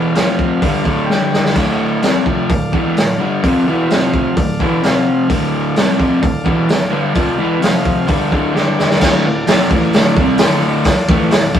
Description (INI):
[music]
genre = garage rock duo or trio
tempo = 129 BPM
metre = 4/4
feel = straight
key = D minor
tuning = A4 = 441 Hz
[part]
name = combo organ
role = sustained chords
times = 0.0-11.6 s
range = D4 to G5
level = -24 LUFS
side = equal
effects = none
[part]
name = raw garage guitar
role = riff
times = 0.0-11.6 s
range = D2 to C4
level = -15 LUFS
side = left 1 dB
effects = overdrive
[part]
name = raw garage drum kit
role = drums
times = 0.2-11.6 s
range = crash cymbal, hi-hat, kick drum, snare drum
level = -16 LUFS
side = equal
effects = none
[sound]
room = moderate studio reverb, RT60 0.6 s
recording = rough rehearsal-room recording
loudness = -12 LUFS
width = side -9 dB against mid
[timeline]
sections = 0.0-9.0 A section; 9.0-11.6 B section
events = drum fill 1.1-1.6, 8.6-9.0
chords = 0.2 F5; 0.6 Dm; 1.1 G5; 1.6 Dm; 3.9 F5; 4.4 Dm; 4.8 F5; 5.3 Dm; 7.6 F5; 8.1 Dm; 8.6 G5; 9.0 Dm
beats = 0.17 0.63 1.10 | 1.57 2.03 2.50 2.97 | 3.44 3.90 4.37 4.83 | 5.30 5.76 6.23 6.70 | 7.16 7.62 8.09 8.55 | 9.02 9.48 9.94 10.40 | 10.86 11.32